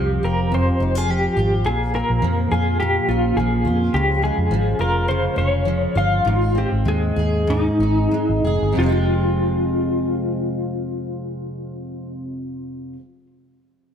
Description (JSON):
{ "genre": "pop", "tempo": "90-105 BPM", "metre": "4/4", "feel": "swing 55% on 16ths", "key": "F minor", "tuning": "A4 = 444 Hz", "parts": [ { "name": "electric guitar through a small old amp", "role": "melody", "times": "0.0-12.9 s", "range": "Eb4 to F5", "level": "-23 LUFS", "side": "left 2 dB", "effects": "tremolo, ping-pong delay" }, { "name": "fingerpicked steel-string acoustic guitar", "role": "accompaniment", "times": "0.0-13.0 s", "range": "F2 to Ab4", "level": "-22 LUFS", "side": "equal", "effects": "double-tracked left and right" }, { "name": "vintage muted fingered electric bass", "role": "bass", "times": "0.0-12.9 s", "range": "F1 to F2", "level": "-22 LUFS", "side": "equal", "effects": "none" } ], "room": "moderate plate reverb, RT60 2.8 s", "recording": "dreamy mix soaked in reverb", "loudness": "-17 LUFS", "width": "side -8 dB against mid", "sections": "0.0-8.8 A section; 8.8-11.5 B section", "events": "slowing down 3.9-8.8", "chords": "0.0 Fsus2; 1.7 Bbm; 3.9 Db; 6.3 Ab; 8.8 Fm" }